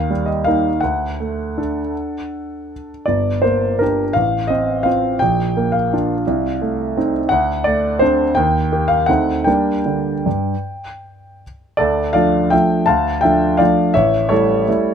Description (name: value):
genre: classical, piano waltz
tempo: 148-182 BPM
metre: 3/4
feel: rubato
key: G minor, D minor from 11.8 s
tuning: A4 = 440 Hz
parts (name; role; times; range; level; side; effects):
- clear grand piano; solo; 0.0-14.9 s; G1 to A5; -15 LUFS; equal; none
room: light reverb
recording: close, detailed microphones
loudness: -15 LUFS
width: side -7 dB against mid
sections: 0.0-11.8 A section; 11.8-14.9 B section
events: none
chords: 0.0 Eb; 0.8 D; 3.1 Gm; 4.2 F/A; 5.2 Bb; 6.3 Adim/C; 7.3 D7; 8.4 Eb; 9.1 D7b9; 9.5 Gm; 11.8 Dm; 14.0 A7